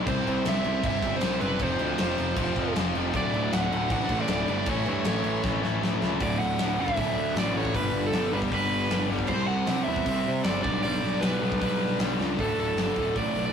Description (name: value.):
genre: punk rock.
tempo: 156 BPM.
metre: 4/4.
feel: straight.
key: unclear.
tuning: A4 = 440 Hz.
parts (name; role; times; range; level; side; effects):
high-gain distorted guitar; riff; 0.0-13.5 s; D2 to C5; -36 LUFS; equal; distortion.
overdriven electric guitar; riff; 0.0-13.5 s; D2 to C4; -32 LUFS; left 8 dB; none.
overdriven electric guitar; riff; 0.0-13.5 s; D2 to C4; -33 LUFS; right 6 dB; none.
fuzz picked electric bass; bass; 0.0-13.5 s; D1 to C3; -30 LUFS; equal; overdrive.
crunchy overdriven guitar; melody; 0.1-13.5 s; A4 to F#5; -30 LUFS; right 3 dB; none.
big rock drum kit; drums; 0.1-13.4 s; crash cymbal, hi-hat, kick drum, snare drum; -31 LUFS; left 1 dB; none.
room: light reverb.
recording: rough rehearsal-room recording, warm saturation.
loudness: -24 LUFS.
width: side -7 dB against mid.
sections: 0.0-6.2 A section; 6.2-12.4 B section; 12.4-13.5 C section.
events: drum fill 5.4-6.2, 12.2.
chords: 0.1 C; 1.6 F; 3.1 D; 4.7 A; 6.2 D; 7.8 G; 9.3 C; 10.7 G/B; 12.4 D.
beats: | 0.08 0.46 0.84 1.23 | 1.61 1.99 2.37 2.76 | 3.14 3.52 3.91 4.29 | 4.68 5.06 5.45 5.83 | 6.22 6.60 6.99 7.37 | 7.76 8.14 8.53 8.91 | 9.30 9.69 10.07 10.46 | 10.84 11.23 11.62 12.00 | 12.39 12.78 13.17.